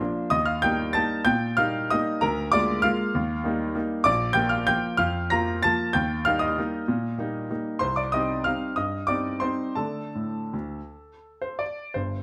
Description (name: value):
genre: classical, piano waltz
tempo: 156-208 BPM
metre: 3/4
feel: rubato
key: unclear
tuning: A4 = 439 Hz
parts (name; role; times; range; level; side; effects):
- clear concert grand piano; solo; 0.0-12.2 s; G1 to Bb6; -25 LUFS; equal; none
room: light reverb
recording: none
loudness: -25 LUFS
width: mono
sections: 0.0-12.0 A section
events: none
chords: 0.3 Eb; 2.2 Bb7/D; 3.1 Eb; 4.0 Bb; 5.9 Eb; 7.8 Cm; 9.8 D5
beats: | 0.32 0.64 0.96 | 1.27 1.58 1.91 | 2.22 2.53 2.84 | 3.14 3.44 3.75 | 4.05 4.35 4.67 | 4.99 5.31 5.63 | 5.94 6.26 6.58 | 6.88 7.18 7.50 | 7.82 8.13 8.45 | 8.76 9.07 9.41 | 9.77 10.15 10.53 | 10.90 11.25 11.60 | 11.95